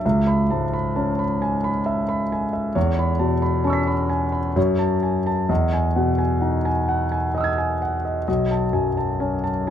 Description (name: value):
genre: classical, impressionist solo piano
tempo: 65 BPM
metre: 3/4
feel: rubato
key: E major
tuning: A4 = 445 Hz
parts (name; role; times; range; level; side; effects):
- warm concert grand piano; solo; 0.0-9.7 s; B1 to B6; -19 LUFS; equal; none
room: light reverb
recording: none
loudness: -19 LUFS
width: side -9 dB against mid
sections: 0.0-9.7 A section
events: none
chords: 0.0 C#m7; 2.8 E6; 4.6 F#m; 5.5 Emaj9; 8.3 B13